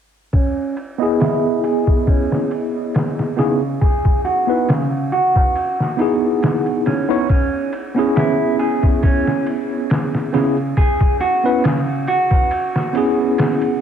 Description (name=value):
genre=trip hop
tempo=69 BPM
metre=4/4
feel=swing 54% on 16ths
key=C# minor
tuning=A4 = 439 Hz
part: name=mellow electric guitar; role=arpeggios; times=0.3-13.8 s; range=C#3 to G#4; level=-20 LUFS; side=right 2 dB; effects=low-pass filter, tape echo
part: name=trip hop sampler-style drum kit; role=drums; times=0.3-13.8 s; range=hi-hat, kick drum, ride cymbal, snare drum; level=-19 LUFS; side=left 1 dB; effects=low-pass filter on cymbals, studio reverb, low-pass filter on kick, low-pass filter on hats, low-pass filter on snare
part: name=barky tine electric piano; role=accompaniment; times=1.0-13.8 s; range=B3 to D#5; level=-19 LUFS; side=equal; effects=medium stereo tremolo, harmonic tremolo, vintage 12-bit sampler grit, low-pass filter, tape echo
room=light reverb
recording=faint mains hum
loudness=-15 LUFS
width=side -8 dB against mid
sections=0.3-13.8 A section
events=filter sweep on tine electric piano 0.3-13.8; filter sweep on clean electric guitar 0.3-13.8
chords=0.3 C#m7; 7.3 F#9sus4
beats=| 0.34 1.21 2.08 2.95 | 3.81 4.68 5.55 6.42 | 7.29 8.16 9.03 9.90 | 10.77 11.64 12.51 13.38